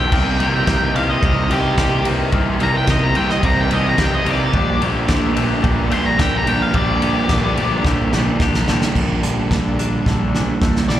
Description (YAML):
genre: indie rock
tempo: 109 BPM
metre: 4/4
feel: straight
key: unclear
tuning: A4 = 439 Hz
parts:
  - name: octave-fuzz lead guitar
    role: melody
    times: 0.0-11.0 s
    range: G4 to C6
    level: -22 LUFS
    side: equal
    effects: distortion, slapback echo
  - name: airy breathy pad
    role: sustained chords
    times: 0.0-11.0 s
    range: G4 to C6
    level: -32 LUFS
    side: right 2 dB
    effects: none
  - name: twangy electric guitar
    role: riff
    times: 0.0-11.0 s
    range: Bb2 to G4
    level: -23 LUFS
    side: left 6 dB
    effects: lush chorus, slapback echo
  - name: fuzz picked electric bass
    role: bass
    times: 0.0-11.0 s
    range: Bb1 to C2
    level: -20 LUFS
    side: equal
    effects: overdrive
  - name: sludgy distorted guitar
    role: riff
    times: 0.1-11.0 s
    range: Bb2 to Eb4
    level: -23 LUFS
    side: right 6 dB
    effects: overdrive, analog chorus
  - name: loose indie drum kit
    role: drums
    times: 0.1-11.0 s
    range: crash cymbal, hi-hat, kick drum, ride cymbal, snare drum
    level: -20 LUFS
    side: equal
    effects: none
room: small room ambience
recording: live gig heard through the venue's PA, recital hall reverb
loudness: -15 LUFS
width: side -12 dB against mid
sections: 0.0-9.0 A section; 9.0-11.0 B section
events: lead electric guitar solo 0.0-9.0; drum fill 7.8-9.0, 10.1-11.0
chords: 0.1 Cm7; 4.5 Gmadd9/Bb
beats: | 0.13 0.68 1.23 1.78 | 2.33 2.88 3.44 3.99 | 4.54 5.09 5.64 6.19 | 6.75 7.30 7.85 8.40 | 8.96 9.51 10.06 10.62